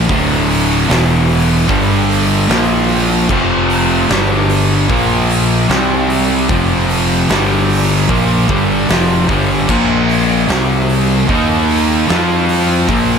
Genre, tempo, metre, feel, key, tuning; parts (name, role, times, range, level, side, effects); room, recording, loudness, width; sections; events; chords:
stoner and doom metal; 75 BPM; 4/4; straight; A4 = 440 Hz
distorted electric guitar; riff; 0.0-13.2 s; D2 to F4; -17 LUFS; equal; distortion
thick fuzz guitar; riff; 0.0-13.2 s; D2 to F4; -17 LUFS; left 9 dB; distortion
thick fuzz guitar; riff; 0.0-13.2 s; D2 to F4; -17 LUFS; right 9 dB; distortion
growling fingered electric bass; bass; 0.0-13.2 s; D1 to F2; -19 LUFS; equal; overdrive
oversized low-tuned drum kit; drums; 0.1-13.1 s; crash cymbal, hi-hat, kick drum, snare drum; -18 LUFS; equal
light reverb; -11 LUFS; side -6 dB against mid
0.0-13.2 A section
0.1 D5; 0.9 E5; 1.7 G5; 2.5 Bb5; 3.3 F5; 4.1 G5; 4.9 Bb5; 5.7 C5; 6.5 F5; 7.3 G5; 8.1 F5; 9.7 Bb5; 10.5 C5; 11.3 Eb5; 12.1 F5